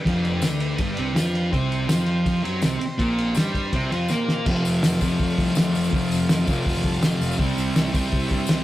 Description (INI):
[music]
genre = garage rock duo or trio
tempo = 164 BPM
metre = 4/4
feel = straight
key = unclear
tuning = A4 = 440 Hz
[part]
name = combo organ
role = sustained chords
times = 0.0-8.6 s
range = C4 to A5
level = -34 LUFS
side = left 1 dB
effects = none
[part]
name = thick fuzz guitar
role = riff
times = 0.1-8.6 s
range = F2 to Bb4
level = -22 LUFS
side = equal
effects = distortion
[part]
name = fuzz fingered electric bass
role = bass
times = 0.1-8.6 s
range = F1 to Bb2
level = -31 LUFS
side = equal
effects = overdrive
[part]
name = cloth-damped thuddy drum kit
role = drums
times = 0.1-8.6 s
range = crash cymbal, hi-hat, kick drum, ride cymbal, snare drum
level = -24 LUFS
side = equal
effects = none
[part]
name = tambourine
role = percussion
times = 0.4-8.6 s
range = none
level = -38 LUFS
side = left 3 dB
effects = none
[sound]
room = moderate studio reverb, RT60 0.7 s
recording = rough rehearsal-room recording, warm saturation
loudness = -20 LUFS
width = side -15 dB against mid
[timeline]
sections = 0.0-4.5 A section; 4.5-8.6 B section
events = drum fill 4.1-4.5; transistor combo organ fill 6.7-7.4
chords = 0.0 G; 1.5 C5; 4.5 F; 7.4 C